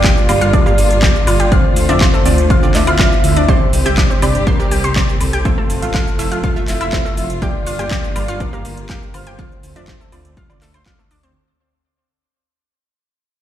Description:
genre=progressive house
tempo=122 BPM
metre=4/4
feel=straight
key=unclear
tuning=A4 = 443 Hz
part: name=soft octave-layered synth lead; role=melody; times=0.0-10.9 s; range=A4 to E5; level=-21 LUFS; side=equal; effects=chorus, tremolo, sidechain pumping, tape echo
part: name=dark chamber string section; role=sustained chords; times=0.0-11.3 s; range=D3 to G4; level=-24 LUFS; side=left 1 dB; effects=vintage 12-bit sampler grit, sidechain pumping
part: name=analog pluck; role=arpeggios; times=0.0-11.3 s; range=A3 to C6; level=-23 LUFS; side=equal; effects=chorus, sidechain pumping, tape echo
part: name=wide unison pluck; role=stabs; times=0.0-11.0 s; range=G2 to G5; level=-23 LUFS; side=right 4 dB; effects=sidechain pumping, tape echo
part: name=electronic kick drum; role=drums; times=0.0-11.0 s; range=none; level=-15 LUFS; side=equal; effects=overdrive
part: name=house drum kit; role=drums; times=0.0-11.3 s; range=cabasa, handclaps, hi-hat, woodblock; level=-22 LUFS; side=left 1 dB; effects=overdrive, sidechain pumping on hats, sidechain pumping on perc
part: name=dark detuned saw bass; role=bass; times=0.3-11.3 s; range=F1 to G2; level=-18 LUFS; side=equal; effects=sidechain pumping
room=little or no reverb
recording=played on a big sound system in a bare room, large studio reverb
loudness=-12 LUFS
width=side -11 dB against mid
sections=0.0-11.4 A section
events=drop 0.0-11.4; fade-out 3.5-11.4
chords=0.0 Gm7; 1.5 Dm7; 3.5 Csus2; 5.5 Fmaj7; 7.4 Gm7; 9.4 Dm7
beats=0.04 0.54 1.03 | 1.52 2.01 2.50 2.99 | 3.48 3.98 4.47 4.96 | 5.45 5.94 6.44 6.93 | 7.42 7.91 8.40 8.89 | 9.39 9.88 10.37 10.86

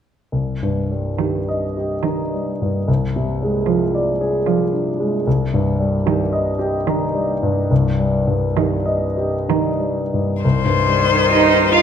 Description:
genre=classical, slow romantic movement for piano quartet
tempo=60-77 BPM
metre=3/4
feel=rubato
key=C minor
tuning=A4 = 440 Hz
part: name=clear grand piano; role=accompaniment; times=0.3-11.8 s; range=C2 to Eb5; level=-18 LUFS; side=left 1 dB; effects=none
part: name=clear cello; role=second line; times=1.2-11.8 s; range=Eb3 to F4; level=-20 LUFS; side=right 9 dB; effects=none
part: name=rich violin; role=melody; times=10.4-11.8 s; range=C5 to F5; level=-16 LUFS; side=left 8 dB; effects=none
part: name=clear viola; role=accompaniment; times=10.4-11.8 s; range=Eb3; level=-23 LUFS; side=right 4 dB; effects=none
room=moderate recital hall reverb, RT60 1.5 s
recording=none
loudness=-16 LUFS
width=side -8 dB against mid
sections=0.3-10.4 A section; 10.4-11.8 B section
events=none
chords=0.3 Cm; 2.9 Dm7b5/C; 5.3 Cm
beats=| 0.32 1.20 2.05 | 2.88 3.67 4.46 | 5.26 6.05 6.87 | 7.70 8.56 9.48 | 10.43 11.29

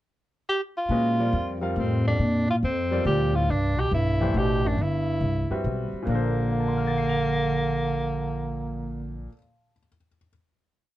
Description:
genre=modal jazz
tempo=139 BPM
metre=3/4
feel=swing 67% on 8ths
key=Bb major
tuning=A4 = 440 Hz
part: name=warm tenor saxophone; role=melody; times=0.5-9.3 s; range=Bb3 to G4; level=-27 LUFS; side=equal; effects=none
part: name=clear baby grand piano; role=accompaniment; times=0.9-10.3 s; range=Bb2 to F7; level=-32 LUFS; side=left 2 dB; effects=none
part: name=upright bass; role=bass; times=0.9-9.3 s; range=G1 to Bb2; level=-27 LUFS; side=left 1 dB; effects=none
part: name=breathy bass clarinet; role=second line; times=1.8-9.3 s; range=F2 to D3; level=-29 LUFS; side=right 2 dB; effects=none
room=light reverb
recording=dark, warm production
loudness=-23 LUFS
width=side -14 dB against mid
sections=0.0-0.9 pickup bar; 0.9-6.1 A section; 6.1-8.7 final chord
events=none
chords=0.0 N.C.; 0.9 Bbmaj9; 3.5 Cmaj9; 6.1 Bbmaj9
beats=0.04 0.47 | 0.90 1.33 1.76 | 2.19 2.62 3.05 | 3.48 3.91 4.34 | 4.78 5.21 5.64 | 6.07 6.50 6.93 | 7.36 7.79 8.22

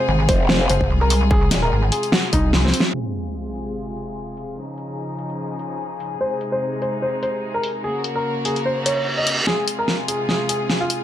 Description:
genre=heavy wobble dubstep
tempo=147 BPM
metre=4/4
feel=swing 55% on 16ths, half-time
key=F phrygian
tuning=A4 = 440 Hz
part: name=warm grand piano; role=melody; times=0.0-2.8, 6.2-11.0 s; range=C4 to Eb5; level=-23 LUFS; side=equal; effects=ping-pong delay
part: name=rich chamber string section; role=sustained chords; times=0.0-11.0 s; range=C3 to Bb4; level=-27 LUFS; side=left 2 dB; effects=sidechain pumping
part: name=pulsing pluck wobble bass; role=bass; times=0.1-2.7 s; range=Eb1 to C2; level=-18 LUFS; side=equal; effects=chorus, overdrive
part: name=growl bass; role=bass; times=0.3-0.7 s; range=F1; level=-19 LUFS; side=equal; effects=chorus, overdrive
part: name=big-room dance drum kit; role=drums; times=0.3-11.0 s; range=hi-hat, snare drum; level=-21 LUFS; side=equal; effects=none
part: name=electronic kick drum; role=drums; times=0.3-2.4 s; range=none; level=-20 LUFS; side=equal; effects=none
part: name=sub drop, reverse cymbal and riser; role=sound effects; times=2.9-4.6, 8.8-11.0 s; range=none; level=-27 LUFS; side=right 2 dB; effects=none
room=light reverb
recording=low-pass filter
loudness=-18 LUFS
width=side -11 dB against mid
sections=0.0-2.9 A section; 2.9-9.5 B section; 9.5-11.0 C section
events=drop 0.0-2.9; drum fill 2.5-2.9, 9.5-11.0; band accent 2.8; impact 2.9-4.6; filter sweep 2.9-9.5; reverse cymbal 8.8-9.5; build-up 9.5-11.0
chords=0.0 Fm; 4.6 Dbadd9; 6.2 Ab; 7.8 Gb; 9.5 Fm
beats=0.08 0.49 0.90 | 1.31 1.72 2.12 2.53 | 2.94 3.35 3.76 4.17 | 4.57 4.98 5.39 5.80 | 6.21 6.61 7.02 7.43 | 7.84 8.25 8.65 9.06 | 9.47 9.88 10.29 10.70

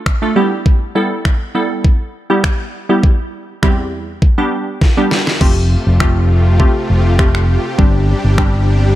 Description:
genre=dance-pop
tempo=101 BPM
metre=4/4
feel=straight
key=unclear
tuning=A4 = 439 Hz
part: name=glassy wavetable pluck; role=accompaniment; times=0.0-8.8 s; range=E2 to A4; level=-17 LUFS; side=right 1 dB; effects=chorus, sidechain pumping
part: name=pop drum kit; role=drums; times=0.1-8.5 s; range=crash cymbal, finger snaps, kick drum, snare drum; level=-13 LUFS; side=equal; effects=overdrive
part: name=supersaw chords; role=sustained chords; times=5.4-9.0 s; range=C3 to G4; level=-20 LUFS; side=left 1 dB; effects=sidechain pumping
part: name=fingered electric bass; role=bass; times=5.4-9.0 s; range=F1 to G1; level=-12 LUFS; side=equal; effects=sidechain pumping
room=little or no reverb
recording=dark, warm production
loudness=-11 LUFS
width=side -14 dB against mid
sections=0.0-5.4 A section; 5.4-9.0 B section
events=drum fill 4.8-5.4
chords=0.4 Em; 3.0 C; 4.2 G; 5.4 Fadd9; 7.8 Gsus4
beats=0.06 | 0.66 1.25 1.84 2.44 | 3.03 3.63 4.22 4.82 | 5.41 6.00 6.60 7.19 | 7.79 8.38

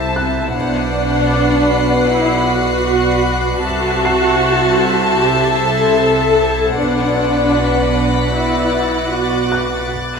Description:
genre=cinematic, suspense film score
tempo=77 BPM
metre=4/4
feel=straight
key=B phrygian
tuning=A4 = 440 Hz
part: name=warm chamber violin section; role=melody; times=0.0-9.9 s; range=F#5 to A5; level=-22 LUFS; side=left 1 dB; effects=none
part: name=warm studio violin section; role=second line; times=0.0-9.9 s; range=A4 to E5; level=-21 LUFS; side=left 4 dB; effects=none
part: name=dark symphonic viola section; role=accompaniment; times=0.0-9.9 s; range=C4 to A4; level=-17 LUFS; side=equal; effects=none
part: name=drifting glass-harmonics texture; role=sustained chords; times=0.0-9.9 s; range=E4 to D6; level=-24 LUFS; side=left 1 dB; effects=chorus, built-in reverb
part: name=rich studio cello section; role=bass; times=0.0-9.9 s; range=B2 to C3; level=-22 LUFS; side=right 3 dB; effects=none
part: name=rich symphonic double bass section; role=bass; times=0.0-9.9 s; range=B1 to C2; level=-23 LUFS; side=right 2 dB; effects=none
part: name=felt-muted upright piano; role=texture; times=0.0-9.9 s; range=F#6 to C7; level=-29 LUFS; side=left 1 dB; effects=none
part: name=warm symphonic violin section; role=texture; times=0.5-10.2 s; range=D6 to C7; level=-27 LUFS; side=left 4 dB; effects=none
room=moderate concert hall reverb, RT60 2.1 s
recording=minimal, uncompressed stereo recording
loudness=-13 LUFS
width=side -5 dB against mid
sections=0.0-10.2 A section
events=break 9.9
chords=0.0 Am/C; 0.5 Bm; 3.6 Am/C; 6.8 Bm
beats=| 0.54 1.32 2.10 2.87 | 3.64 4.42 5.21 5.99 | 6.77 7.55 8.34 9.12 | 9.91

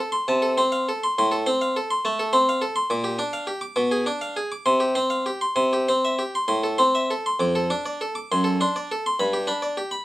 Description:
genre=classical, baroque-style suite movement for harpsichord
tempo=64-71 BPM (dotted quarters)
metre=6/8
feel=rubato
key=F major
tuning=A4 = 439 Hz
part: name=harpsichord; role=solo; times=0.0-10.0 s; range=F2 to D6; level=-21 LUFS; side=equal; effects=none
room=light reverb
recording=none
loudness=-21 LUFS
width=side -17 dB against mid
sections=0.0-10.0 A section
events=none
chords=0.0 F; 1.2 F/A; 2.9 Gm7/Bb; 3.8 Bdim7; 4.7 Csus4; 5.6 C; 6.5 Am; 7.4 Dm/F; 8.3 D7/F#; 9.2 G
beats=0.27 | 1.17 2.04 | 2.88 3.75 | 4.66 5.58 | 6.50 7.41 | 8.29 9.18

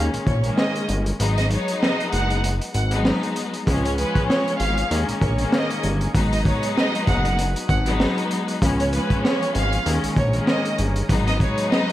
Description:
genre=hip hop, boom-bap hip-hop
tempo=97 BPM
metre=4/4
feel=swing 56% on 16ths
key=G# dorian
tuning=A4 = 439 Hz
part: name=warm studio string section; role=accompaniment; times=0.0-11.9 s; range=D#3 to D#4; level=-25 LUFS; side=left 2 dB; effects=cassette tape, high-pass filter, low-pass filter
part: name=fat analog bass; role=bass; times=0.0-11.5 s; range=F#1 to D#2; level=-22 LUFS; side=equal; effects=none
part: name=crunchy breakbeat drum kit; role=drums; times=0.1-11.9 s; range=hi-hat, kick drum, snare drum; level=-24 LUFS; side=equal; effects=none
part: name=warm studio violin section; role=melody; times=0.3-11.9 s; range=B4 to F#5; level=-27 LUFS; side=right 1 dB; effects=high-pass filter, low-pass filter, tape echo
part: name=bright tonewheel organ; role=sustained chords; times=3.7-11.9 s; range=G#3 to C#5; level=-34 LUFS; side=right 1 dB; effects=wide subtle chorus, high-pass filter, low-pass filter
room=light reverb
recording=vinyl crackle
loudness=-19 LUFS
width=side -14 dB against mid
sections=0.0-3.7 A section; 3.7-11.9 B section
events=kick muted 1.2-3.7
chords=0.0 D#7sus4; 1.2 G#m7; 3.7 C#7; 4.9 D#7sus4; 6.1 G#m7; 8.6 C#7; 9.9 D#7sus4; 11.1 G#m7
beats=0.58 | 1.20 1.81 2.43 3.05 | 3.67 4.29 4.91 5.53 | 6.14 6.76 7.38 8.00 | 8.62 9.24 9.86 10.47 | 11.09 11.71

